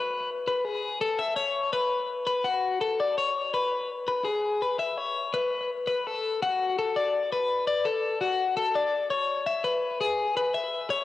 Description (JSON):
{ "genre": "rock", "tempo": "167 BPM", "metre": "5/4", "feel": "straight", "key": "unclear", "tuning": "A4 = 442 Hz", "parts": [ { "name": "twelve-string electric guitar", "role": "solo", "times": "0.0-11.0 s", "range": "F#4 to E5", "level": "-25 LUFS", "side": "left 3 dB", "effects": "spring reverb, analog delay" } ], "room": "light reverb", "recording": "home recording on cassette", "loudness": "-25 LUFS", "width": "side -14 dB against mid", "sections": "0.0-6.1 A section; 6.1-11.0 B section", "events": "none", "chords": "none", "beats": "0.29 | 0.65 1.01 1.37 1.73 2.09 | 2.45 2.81 3.17 3.53 3.89 | 4.25 4.62 4.97 5.33 5.69 | 6.05 6.41 6.77 7.13 7.49 | 7.85 8.21 8.56 8.92 9.28 | 9.64 10.00 10.36 10.72" }